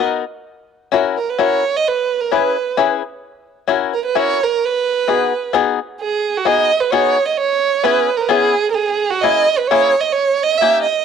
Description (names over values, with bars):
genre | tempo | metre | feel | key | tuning
musette waltz | 130 BPM | 3/4 | straight | B major | A4 = 440 Hz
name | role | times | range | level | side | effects
bluegrass banjo | accompaniment | 0.0-10.9 s | A#3 to B4 | -17 LUFS | left 10 dB | cassette tape
dark violin | melody | 1.2-11.0 s | F#4 to E5 | -16 LUFS | right 6 dB | cassette tape
room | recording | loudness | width
moderate spring reverb, RT60 2.0 s, small room ambience | home recording on cassette | -14 LUFS | side -7 dB against mid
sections
0.0-6.0 A section; 6.0-11.0 B section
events
none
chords
0.5 F#7; 1.9 C#m7; 3.2 F#7; 4.6 B6; 7.4 C#m7; 8.8 A#m7b5; 10.1 D#7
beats
| 0.46 0.93 1.39 | 1.85 2.31 2.77 | 3.23 3.69 4.15 | 4.61 5.08 5.54 | 6.01 6.47 6.93 | 7.39 7.85 8.31 | 8.77 9.23 9.69 | 10.15 10.61